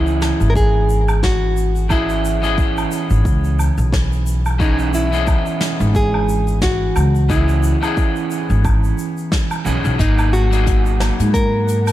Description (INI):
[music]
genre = sunset chillout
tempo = 89 BPM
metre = 4/4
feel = swing 56% on 16ths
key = C# dorian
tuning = A4 = 439 Hz
[part]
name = nylon-string guitar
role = melody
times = 0.0-11.9 s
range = D#4 to A#4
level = -22 LUFS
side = left 1 dB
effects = ping-pong delay
[part]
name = electric guitar at the edge of break-up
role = accompaniment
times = 0.0-11.9 s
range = E3 to D#5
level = -22 LUFS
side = right 1 dB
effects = auto-pan, ping-pong delay
[part]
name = upright bass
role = bass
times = 0.0-11.9 s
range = G#1 to G#2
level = -17 LUFS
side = equal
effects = none
[part]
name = soft brush drum kit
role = drums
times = 0.1-11.9 s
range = hi-hat, shaker, snare drum, woodblock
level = -26 LUFS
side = equal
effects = none
[part]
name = electronic kick drum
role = drums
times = 0.6-11.5 s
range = none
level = -19 LUFS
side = equal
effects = none
[part]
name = shimmering ambient pad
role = sustained chords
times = 11.0-11.9 s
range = F#4 to A#5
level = -41 LUFS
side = left 1 dB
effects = none
[sound]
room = small room ambience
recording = dark, warm production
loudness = -14 LUFS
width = side -14 dB against mid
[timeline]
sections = 0.0-11.9 A section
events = none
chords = 0.0 C#m9; 10.0 G#m9